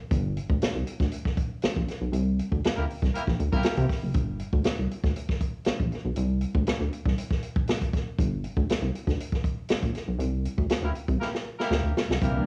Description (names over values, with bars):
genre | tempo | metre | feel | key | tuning
funk | 119 BPM | 4/4 | straight | unclear | A4 = 440 Hz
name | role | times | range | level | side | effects
rubbery square bass | bass | 0.1-12.4 s | F#1 to C3 | -29 LUFS | equal | none
swinging big-band drum kit | drums | 0.1-12.3 s | hi-hat, kick drum, snare drum | -30 LUFS | equal | cassette tape
clear horn section | second line | 2.8-3.9, 10.8-12.4 s | Bb3 to Bb4 | -36 LUFS | equal | cassette tape, tape echo
string machine, violins | sustained chords | 12.2-12.5 s | E3 to D4 | -31 LUFS | equal | ensemble chorus, cassette tape
room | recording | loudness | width
light reverb | home recording on cassette, studio reverb | -28 LUFS | mono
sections
0.0-12.2 A section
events
band accent 2.1-4.1, 10.2-12.2; drum fill 11.2-12.2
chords
0.1 Gm; 2.1 C9; 4.1 Gm; 6.2 Csus2; 8.2 Gm; 10.2 Cadd9